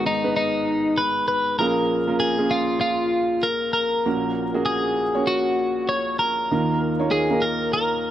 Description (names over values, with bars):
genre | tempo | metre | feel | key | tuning
pop | 98 BPM | 4/4 | swing 56% on 16ths | Eb minor | A4 = 440 Hz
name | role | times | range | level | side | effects
twelve-string electric guitar | melody | 0.0-8.1 s | Eb4 to Db5 | -22 LUFS | left 1 dB | none
clear upright piano | accompaniment | 0.0-8.1 s | Ab1 to Db5 | -24 LUFS | right 2 dB | none
room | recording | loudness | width
moderate scoring stage reverb, RT60 1.6 s, small room ambience | none | -20 LUFS | side -12 dB against mid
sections
0.0-8.1 A section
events
none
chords
0.0 Abmadd9; 1.6 Bbm7; 4.1 Gb/Bb; 6.5 Ebsus2